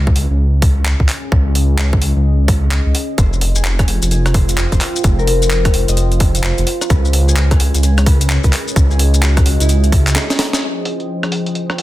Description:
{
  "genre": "UK garage, two-step garage",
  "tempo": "129 BPM",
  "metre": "4/4",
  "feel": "swing 63% on 16ths",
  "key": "unclear",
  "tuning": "A4 = 438 Hz",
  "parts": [
    { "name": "dark detuned saw bass", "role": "bass", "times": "0.0-10.2 s", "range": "F1 to Db2", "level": "-14 LUFS", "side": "equal", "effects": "none" },
    { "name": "deep dark ambient pad", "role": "texture", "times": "0.5-11.8 s", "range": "Db4 to G5", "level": "-25 LUFS", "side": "equal", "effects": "chorus, built-in reverb, sidechain pumping" },
    { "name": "electronic kick drum", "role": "drums", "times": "0.1-10.0 s", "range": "none", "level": "-15 LUFS", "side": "equal", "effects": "none" },
    { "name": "breakbeat sampler-style drum kit", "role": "drums", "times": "0.2-11.8 s", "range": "handclaps, hi-hat, rim click, snare drum", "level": "-20 LUFS", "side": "equal", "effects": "low-pass filter on hats, low-pass filter on snare" },
    { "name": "concert harp", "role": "melody", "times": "3.2-11.8 s", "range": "Fb4 to Eb5", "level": "-26 LUFS", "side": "left 4 dB", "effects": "tape echo" },
    { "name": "maracas", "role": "percussion", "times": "3.2-10.6 s", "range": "none", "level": "-25 LUFS", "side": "left 4 dB", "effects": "none" },
    { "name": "warm analog pad", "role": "sustained chords", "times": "10.6-11.8 s", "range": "F3 to G5", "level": "-21 LUFS", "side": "left 1 dB", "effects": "chorus, sidechain pumping" }
  ],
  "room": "little or no reverb",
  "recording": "dense, heavily limited modern master",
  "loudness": "-12 LUFS",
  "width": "side -16 dB against mid",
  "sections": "0.0-10.6 A section; 10.6-11.8 B section",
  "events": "fade-in on ambient pad 0.0-10.6; break 10.2-10.6; drum fill 10.2-10.6; band accent 10.5; filter sweep on analog synth pad 10.6-11.8",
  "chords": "0.0 Db5; 3.2 Fm7; 6.7 Dbm; 10.6 Fm7"
}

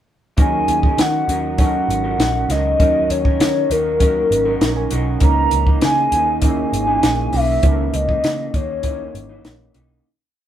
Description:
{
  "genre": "indie pop, bedroom pop",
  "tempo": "99 BPM",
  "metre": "4/4",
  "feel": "straight",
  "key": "C# dorian",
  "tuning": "A4 = 440 Hz",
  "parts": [
    { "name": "hollow clarinet-like synth lead", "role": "melody", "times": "0.4-9.8 s", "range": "A#4 to A#5", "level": "-19 LUFS", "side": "left 1 dB", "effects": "chorus" },
    { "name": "electric guitar through a small old amp", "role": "accompaniment", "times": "0.4-10.1 s", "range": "C#3 to A#4", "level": "-25 LUFS", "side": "right 2 dB", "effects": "vibrato effect" },
    { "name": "warm analog keys", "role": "accompaniment", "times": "0.4-10.1 s", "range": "D#3 to A#5", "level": "-25 LUFS", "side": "right 3 dB", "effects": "chorus" },
    { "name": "vintage muted picked electric bass", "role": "bass", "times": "0.4-10.0 s", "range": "G#1 to D#3", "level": "-23 LUFS", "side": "equal", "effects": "none" },
    { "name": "compact cocktail drum kit", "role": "drums", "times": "0.4-9.9 s", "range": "hi-hat, kick drum, snare drum", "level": "-17 LUFS", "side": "equal", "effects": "none" }
  ],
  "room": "light reverb",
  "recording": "band playing live in one room",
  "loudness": "-15 LUFS",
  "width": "side -11 dB against mid",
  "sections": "0.4-10.1 A section",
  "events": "synth keys fill 4.3-5.2; fade-out 7.6-10.1",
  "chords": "0.4 D#m7; 5.2 C#m69"
}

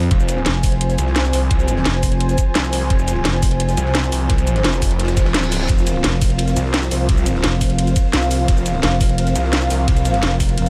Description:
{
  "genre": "dark technical drum and bass",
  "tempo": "172 BPM",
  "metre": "4/4",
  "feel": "straight",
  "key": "F minor",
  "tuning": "A4 = 440 Hz",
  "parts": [
    { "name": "dark analog pad", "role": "sustained chords", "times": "0.0-10.7 s", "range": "F3 to Ab5", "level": "-26 LUFS", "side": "equal", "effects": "chorus, sidechain pumping" },
    { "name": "growling FM bass", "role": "bass", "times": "0.0-3.8, 6.0-10.7 s", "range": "F1", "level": "-21 LUFS", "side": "equal", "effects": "tube saturation" },
    { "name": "crunchy breakbeat drum kit", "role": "drums", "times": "0.0-10.7 s", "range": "ride cymbal, snare drum", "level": "-36 LUFS", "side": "equal", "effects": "none" },
    { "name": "granular cloud pad", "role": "texture", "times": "0.0-10.7 s", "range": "F4 to F5", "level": "-30 LUFS", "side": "equal", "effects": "built-in reverb, sidechain pumping" },
    { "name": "snarling distorted saw bass", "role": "bass", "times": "0.1-10.2 s", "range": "F1 to C2", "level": "-22 LUFS", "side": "equal", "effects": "distortion, overdrive, sidechain pumping" },
    { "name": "drum and bass drum kit", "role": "drums", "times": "0.1-10.7 s", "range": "hi-hat, ride cymbal, shaker, snare drum", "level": "-25 LUFS", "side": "equal", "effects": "none" },
    { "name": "electronic kick drum", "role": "drums", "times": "0.1-10.5 s", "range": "none", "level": "-20 LUFS", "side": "equal", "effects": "none" },
    { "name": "reverse cymbal", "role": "sound effects", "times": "5.2-5.7 s", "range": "none", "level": "-32 LUFS", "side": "equal", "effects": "none" }
  ],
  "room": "light reverb",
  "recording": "none",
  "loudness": "-17 LUFS",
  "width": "mono",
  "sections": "0.0-10.7 A section",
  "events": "reverse cymbal 5.2-5.7",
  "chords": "0.0 F5"
}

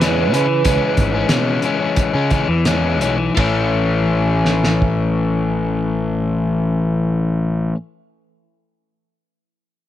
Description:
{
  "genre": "indie rock",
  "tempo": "83-95 BPM",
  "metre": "4/4",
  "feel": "straight",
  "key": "A major",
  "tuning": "A4 = 444 Hz",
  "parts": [
    { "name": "overdriven synth lead", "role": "melody", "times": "0.0-1.0 s", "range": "B4", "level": "-22 LUFS", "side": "right 10 dB", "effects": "chorus, analog delay" },
    { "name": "overdriven electric guitar", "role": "riff", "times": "0.0-7.8 s", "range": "E3 to C#4", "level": "-18 LUFS", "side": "left 4 dB", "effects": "none" },
    { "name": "fuzz picked electric bass", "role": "bass", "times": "0.0-7.7 s", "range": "G#1 to C#3", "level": "-20 LUFS", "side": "right 1 dB", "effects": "overdrive" },
    { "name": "cloth-damped thuddy drum kit", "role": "drums", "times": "0.0-5.0 s", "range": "hi-hat, kick drum, ride cymbal, snare drum", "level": "-20 LUFS", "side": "right 1 dB", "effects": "none" }
  ],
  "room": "studio reverb",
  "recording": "none",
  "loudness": "-15 LUFS",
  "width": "side -12 dB against mid",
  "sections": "0.0-3.4 A section; 3.4-6.3 B section",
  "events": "slowing down 0.0-3.4",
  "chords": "0.0 C#m7; 3.4 A"
}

